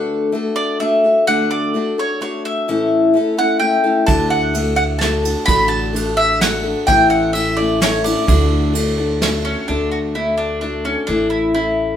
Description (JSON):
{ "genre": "honky-tonk and classic country", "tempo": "128 BPM", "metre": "3/4", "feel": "straight", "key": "D major", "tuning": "A4 = 440 Hz", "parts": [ { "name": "mandolin", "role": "melody", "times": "0.0-12.0 s", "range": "C#4 to B5", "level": "-18 LUFS", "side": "equal", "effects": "none" }, { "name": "picked old ladder-braced acoustic guitar", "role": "accompaniment", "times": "0.0-12.0 s", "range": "A2 to A4", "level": "-18 LUFS", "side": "left 3 dB", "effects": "none" }, { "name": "upright bass", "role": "bass", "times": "4.1-12.0 s", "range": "A1 to D2", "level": "-23 LUFS", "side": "right 1 dB", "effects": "none" }, { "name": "soft brush drum kit", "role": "drums", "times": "4.1-9.3 s", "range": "kick drum, ride cymbal, snare drum", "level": "-21 LUFS", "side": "right 2 dB", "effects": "none" } ], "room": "wet studio reverb, RT60 0.7 s", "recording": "band playing live in one room", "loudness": "-14 LUFS", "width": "side -9 dB against mid", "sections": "0.0-9.7 A section; 9.7-12.0 B section", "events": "none", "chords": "0.0 D; 2.7 A; 4.1 D; 6.9 A; 8.3 D; 11.1 A" }